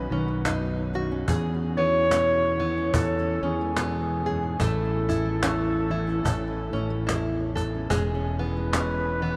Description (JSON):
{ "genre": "acoustic folk duo or small band", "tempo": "72 BPM", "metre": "4/4", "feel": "swing 59% on 8ths", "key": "E major", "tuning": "A4 = 441 Hz", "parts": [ { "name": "mellow flugelhorn", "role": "melody", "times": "0.0-9.4 s", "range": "G#4 to C#5", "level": "-31 LUFS", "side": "equal", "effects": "none" }, { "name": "fingerpicked steel-string acoustic guitar", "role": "accompaniment", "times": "0.0-9.4 s", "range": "E2 to G#4", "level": "-32 LUFS", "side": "equal", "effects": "none" }, { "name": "open-back banjo", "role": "arpeggios", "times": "0.0-9.4 s", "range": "F#3 to A4", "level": "-35 LUFS", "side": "equal", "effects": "none" }, { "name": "fingered electric bass", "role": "bass", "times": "0.0-9.4 s", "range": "E1 to E2", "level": "-32 LUFS", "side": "equal", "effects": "none" }, { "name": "cajon", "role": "percussion", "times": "0.1-9.0 s", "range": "none", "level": "-34 LUFS", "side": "equal", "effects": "none" } ], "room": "wet cathedral reverb, RT60 6.8 s", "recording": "in a vast, echoing space", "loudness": "-26 LUFS", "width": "mono", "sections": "0.0-9.4 A section", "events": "none", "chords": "0.0 Badd9; 1.3 E6; 4.6 A; 7.9 E6", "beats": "0.46 | 1.28 2.11 2.94 3.77 | 4.59 5.42 6.25 7.08 | 7.90 8.73" }